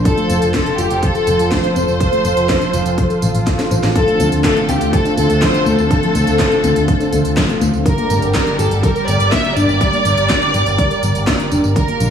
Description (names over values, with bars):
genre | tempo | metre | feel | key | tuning
italo disco | 123 BPM | 4/4 | straight | unclear | A4 = 440 Hz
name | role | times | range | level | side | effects
lush unison pad | sustained chords | 0.0-12.1 s | D3 to D5 | -20 LUFS | equal | chorus
fingered electric bass with an envelope filter | bass | 0.0-12.1 s | F1 to D2 | -19 LUFS | equal | none
warm symphonic violin section | melody | 0.1-12.1 s | G4 to E5 | -18 LUFS | equal | digital delay
soft round pluck | arpeggios | 0.1-12.1 s | C3 to C5 | -22 LUFS | left 2 dB | chorus, digital delay
electronic kick drum | drums | 0.1-11.9 s | none | -19 LUFS | equal | studio reverb
house drum kit | drums | 0.1-12.1 s | handclaps, hi-hat, snare drum, tambourine | -23 LUFS | equal | studio reverb, gated reverb
room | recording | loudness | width
light reverb | vinyl crackle, small room ambience | -13 LUFS | side -8 dB against mid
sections
0.0-12.1 A section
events
drum fill 3.5-4.0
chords
0.1 F; 4.0 Dm7; 7.9 Gm